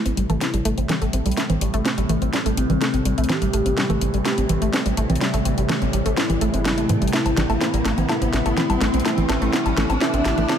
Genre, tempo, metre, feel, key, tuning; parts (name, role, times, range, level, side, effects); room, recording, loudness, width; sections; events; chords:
melodic techno; 125 BPM; 4/4; straight; A minor; A4 = 440 Hz
fat analog lead; melody; 0.0-10.6 s; C4 to G4; -27 LUFS; left 1 dB; phaser, digital delay
lush unison pad; sustained chords; 0.0-10.6 s; C3 to B3; -29 LUFS; equal; chorus
overtone-sweeping drone; drone; 0.6-10.6 s; A2 to E3; -33 LUFS; left 1 dB; chorus, built-in reverb
riser; sound effects; 0.1-10.6 s; -30 LUFS; equal
wide unison pluck; arpeggios; 0.1-10.6 s; G3 to C4; -26 LUFS; equal; cassette tape, ping-pong delay
tight sequencer bass; bass; 0.1-10.5 s; G1 to A2; -23 LUFS; equal
house drum kit; drums; 0.1-10.6 s; congas, hi-hat, snare drum, woodblock; -24 LUFS; right 1 dB; overdrive
moderate concert hall reverb, RT60 1.9 s; -18 LUFS; side -8 dB against mid
0.0-10.6 A section
build-up 0.0-10.6; drum fill 0.0-10.6; filter sweep on synth arpeggio sound 0.0-10.6; filter sweep on analog synth pad 0.0-10.6; riser 0.1-10.6
0.0 Am7